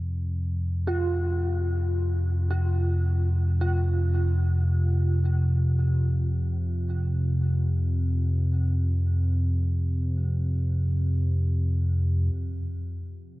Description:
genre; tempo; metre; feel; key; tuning
dark ambient drone; free time; none; none; unclear; A4 = 440 Hz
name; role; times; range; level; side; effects
deep rumbling drone; drone; 0.0-13.4 s; F2 to C3; -23 LUFS; equal; built-in reverb
dark detuned synth bell; arpeggios; 0.9-12.4 s; F4; -34 LUFS; right 1 dB; chorus, phaser, ping-pong delay
room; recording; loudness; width
wet huge ambient reverb, RT60 8.7 s; worn, warbling old tape, cassette tape, warbly pitch drift; -23 LUFS; side -19 dB against mid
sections
0.0-12.3 A section; 12.3-13.4 B section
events
filter sweep on synth drone 12.3-13.4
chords
0.0 F5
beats
free time

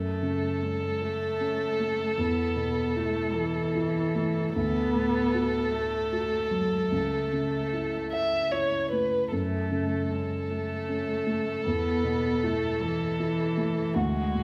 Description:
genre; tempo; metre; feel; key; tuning
neoclassical piano and strings; 51 BPM (dotted quarters); 6/8; rubato; unclear; A4 = 440 Hz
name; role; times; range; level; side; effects
muted violin; melody; 0.0-14.4 s; F#4 to E5; -32 LUFS; equal; none
muted cello; second line; 0.0-14.4 s; E3 to B3; -34 LUFS; equal; none
felt-muted upright piano; accompaniment; 0.0-14.4 s; C#2 to A4; -32 LUFS; equal; none
room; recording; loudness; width
wet large studio reverb, RT60 1.3 s; band playing live in one room; -28 LUFS; mono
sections
0.0-14.4 A section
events
none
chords
0.0 F#m; 2.2 Esus4; 4.5 D; 6.9 A/C#; 9.3 F#m; 11.7 Esus4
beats
1.03 | 2.19 3.36 | 4.55 5.73 | 6.92 8.12 | 9.32 10.50 | 11.66 12.82 | 13.98

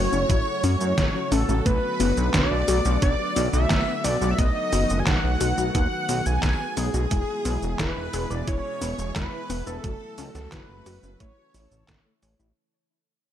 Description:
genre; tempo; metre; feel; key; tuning
synthwave; 88 BPM; 4/4; straight; B dorian; A4 = 441 Hz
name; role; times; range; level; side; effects
wide unison lead; melody; 0.0-11.8 s; G#4 to G#5; -28 LUFS; equal; ping-pong delay
string machine, violins; second line; 0.0-11.8 s; G#4 to G#5; -37 LUFS; equal; ensemble chorus, digital delay
lush unison pad; sustained chords; 0.0-12.6 s; B2 to A4; -32 LUFS; equal; chorus, sidechain pumping
warbly dusty pluck; arpeggios; 0.0-12.4 s; G#3 to C#5; -31 LUFS; left 4 dB; chorus, vintage 12-bit sampler grit, digital delay
chorused synth bass; bass; 0.0-12.5 s; E1 to F#2; -26 LUFS; equal; sidechain pumping
mellow electric guitar; riff; 0.1-12.4 s; F#3 to B4; -34 LUFS; left 4 dB; lush chorus, digital delay
detuned 8-bit digital drum machine; drums; 0.1-12.5 s; cabasa, handclaps, hi-hat, snare drum; -29 LUFS; right 1 dB; gated reverb
electronic kick drum; drums; 0.3-12.0 s; none; -26 LUFS; equal; none
room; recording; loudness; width
little or no reverb; none; -21 LUFS; side -10 dB against mid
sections
0.0-12.6 A section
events
fade-out 5.3-12.6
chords
0.0 F#m7; 1.7 Bm7; 4.4 B7; 7.1 E; 9.8 F#m7; 11.2 A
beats
0.29 0.98 | 1.66 2.34 3.02 3.70 | 4.38 5.07 5.75 6.43 | 7.11 7.79 8.48 9.16 | 9.84 10.52 11.20 11.88

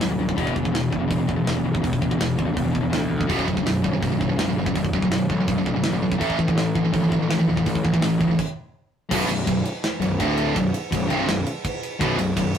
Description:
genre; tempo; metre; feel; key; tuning
heavy metal; 165 BPM; 4/4; straight; B minor; A4 = 441 Hz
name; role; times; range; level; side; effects
distorted electric guitar; riff; 0.0-12.5 s; B1 to A3; -22 LUFS; left 2 dB; distortion
fuzz picked electric bass; bass; 0.0-12.5 s; B0 to D2; -26 LUFS; equal; overdrive
tight metal drum kit; drums; 0.0-12.6 s; crash cymbal, hi-hat, kick drum, ride cymbal, snare drum; -27 LUFS; right 1 dB; none
high-gain distorted guitar; riff; 3.3-12.5 s; B1 to A3; -27 LUFS; right 8 dB; distortion
room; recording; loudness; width
light reverb; rough rehearsal-room recording, warm saturation; -20 LUFS; side -8 dB against mid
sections
0.0-9.1 A section; 9.1-12.6 B section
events
stop 8.4-9.1; half time 9.1-12.6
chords
0.4 E5; 3.3 B5; 6.2 A5; 9.1 B5; 10.2 D5; 10.6 B5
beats
0.01 | 0.38 0.74 1.10 1.47 | 1.83 2.20 2.56 2.93 | 3.29 3.65 4.02 4.38 | 4.75 5.11 5.48 5.84 | 6.21 6.57 6.93 7.30 | 7.66 8.02 8.39 8.75 | 9.11 9.47 9.84 10.20 | 10.56 10.92 11.28 11.64 | 12.00 12.36

